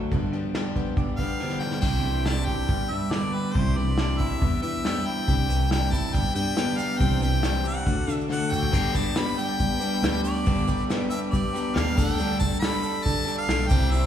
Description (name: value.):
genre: folk rock and heartland rock.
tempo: 139 BPM.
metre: 4/4.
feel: straight.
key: G major.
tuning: A4 = 440 Hz.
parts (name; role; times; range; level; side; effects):
picked plugged-in steel-string acoustic guitar; accompaniment; 0.0-14.1 s; G2 to B4; -31 LUFS; left 4 dB; none.
electric guitar through a small old amp; riff; 0.0-14.1 s; E2 to A4; -30 LUFS; right 2 dB; spring reverb.
fingered electric bass; bass; 0.0-14.1 s; G1 to G3; -28 LUFS; equal; none.
soft brush drum kit; drums; 0.1-13.8 s; crash cymbal, hi-hat, kick drum, snare drum, toms; -28 LUFS; equal; none.
bright harmonica; melody; 1.2-14.1 s; B4 to B5; -29 LUFS; left 1 dB; none.
accordion; sustained chords; 1.8-14.1 s; F#4 to E6; -42 LUFS; right 2 dB; none.
tube shaker; percussion; 5.3-14.0 s; none; -46 LUFS; right 8 dB; none.
room: moderate concert hall reverb, RT60 1.8 s.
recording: recorded in a church or concert hall.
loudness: -22 LUFS.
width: side -10 dB against mid.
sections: 0.0-1.8 A section; 1.8-8.7 B section; 8.7-14.1 C section.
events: drum fill 1.4-1.8, 8.3-8.7.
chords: 0.1 G7; 1.8 Cadd9; 2.7 G; 3.6 Cadd9; 4.4 Em7; 5.3 Cadd9; 6.1 G; 7.0 Cadd9; 7.9 D; 8.7 G; 12.0 Dsus4.